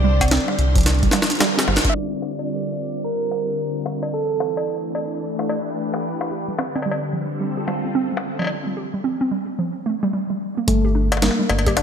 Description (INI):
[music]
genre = IDM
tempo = 110 BPM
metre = 4/4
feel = swing 62% on 16ths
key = G dorian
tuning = A4 = 440 Hz
[part]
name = soft struck synth lead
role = melody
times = 0.0-6.0, 10.7-11.8 s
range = A3 to E5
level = -26 LUFS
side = right 1 dB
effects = chorus, digital delay
[part]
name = soft string machine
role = sustained chords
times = 0.0-8.5 s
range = D3 to C5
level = -26 LUFS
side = left 1 dB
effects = phaser, ensemble chorus, sidechain pumping
[part]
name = warbly dusty pluck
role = arpeggios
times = 0.0-1.9, 6.3-11.8 s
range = F3 to G4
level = -24 LUFS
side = right 3 dB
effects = chorus, digital delay
[part]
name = round analog bass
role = bass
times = 0.0-1.8, 10.7-11.8 s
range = G1 to C2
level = -19 LUFS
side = equal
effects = none
[part]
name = electronic kick drum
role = drums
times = 0.2-1.9, 10.7-11.7 s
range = none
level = -21 LUFS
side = equal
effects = overdrive
[part]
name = jungle sampler-style drum kit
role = drums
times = 0.2-11.8 s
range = bongos, cowbell, hi-hat, snare drum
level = -23 LUFS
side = left 1 dB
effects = none
[sound]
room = moderate lush hall reverb, RT60 2.5 s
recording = bright 1980s-style digital production, low-pass filter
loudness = -19 LUFS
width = side -7 dB against mid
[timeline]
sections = 0.0-1.9 A section; 1.9-10.7 B section; 10.7-11.8 A section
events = drum fill 0.9-1.9; band accent 1.8; filter sweep on string machine 1.9-10.7; filter sweep 1.9-10.7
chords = 0.0 C9sus4; 1.9 Gm7; 4.1 Am11; 6.3 Dm7; 8.5 C5; 10.7 Gmadd9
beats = 0.31 0.86 1.41 | 1.95 2.50 3.04 3.59 | 4.13 4.68 5.22 5.77 | 6.31 6.86 7.41 7.95 | 8.49 9.04 9.59 10.13 | 10.68 11.22 11.77